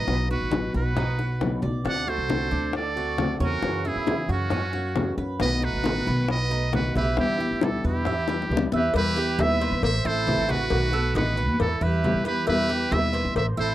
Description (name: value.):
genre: latin, Cuban son and guajira.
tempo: 135 BPM.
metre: 4/4.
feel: straight.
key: E minor, E harmonic minor from 8.9 s.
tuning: A4 = 440 Hz.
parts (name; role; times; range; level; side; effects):
trumpet with metal mute; melody; 0.0-13.7 s; F#4 to F#5; -29 LUFS; equal; none.
bright silver concert flute; second line; 0.0-13.7 s; C#4 to D5; -34 LUFS; right 12 dB; slapback echo.
nylon-string guitar; accompaniment; 0.0-13.7 s; B2 to F#4; -29 LUFS; left 2 dB; none.
Cuban tres; arpeggios; 0.0-13.7 s; B3 to E5; -31 LUFS; right 4 dB; none.
upright bass; bass; 0.0-13.7 s; A1 to E3; -27 LUFS; equal; none.
bongos and cowbell; percussion; 0.1-13.6 s; none; -30 LUFS; left 6 dB; none.
congas; percussion; 0.1-13.7 s; none; -31 LUFS; equal; none.
room: light reverb.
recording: dry, close 1970s-style studio recording.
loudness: -22 LUFS.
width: side -14 dB against mid.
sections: 0.0-8.9 A section; 8.9-13.7 B section.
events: drum fill 8.3-8.9.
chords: 0.1 B; 1.9 D7; 3.6 F#7; 5.4 B7; 7.2 Em7; 8.9 Em; 9.8 Am; 10.7 B7; 11.6 Em.